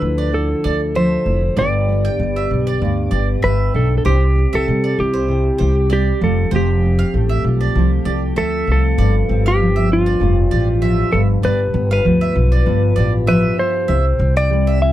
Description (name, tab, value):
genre	pop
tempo	98 BPM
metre	4/4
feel	swing 55% on 16ths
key	G mixolydian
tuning	A4 = 443 Hz
part	clean lap steel guitar	melody	0.0-14.9 s	F4 to E5	-20 LUFS	equal	none
part	fingerpicked steel-string acoustic guitar	accompaniment	0.0-14.9 s	G2 to A4	-20 LUFS	equal	double-tracked left and right
part	upright bass	bass	0.0-14.9 s	F1 to C3	-17 LUFS	equal	none
part	bowl-back mandolin	arpeggios	0.2-14.8 s	C5 to G5	-27 LUFS	right 7 dB	none
room	little or no reverb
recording	dry, close 1970s-style studio recording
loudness	-14 LUFS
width	side -13 dB against mid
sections	0.0-9.0 A section; 9.0-14.9 B section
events	none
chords	0.0 Dmadd9; 1.6 G; 4.0 C; 6.2 Fadd9; 9.0 G7sus4; 11.1 G7; 13.9 C